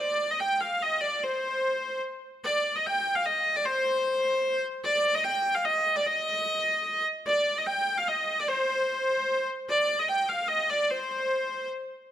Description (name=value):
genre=medieval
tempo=148 BPM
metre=3/4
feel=straight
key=C minor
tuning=A4 = 441 Hz
part: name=clear hurdy-gurdy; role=solo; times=0.0-11.7 s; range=C5 to G5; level=-25 LUFS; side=equal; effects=none
room=moderate recital hall reverb, RT60 1.7 s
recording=close, detailed microphones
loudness=-25 LUFS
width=side -10 dB against mid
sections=0.0-2.4 A section; 2.4-12.1 A section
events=none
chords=none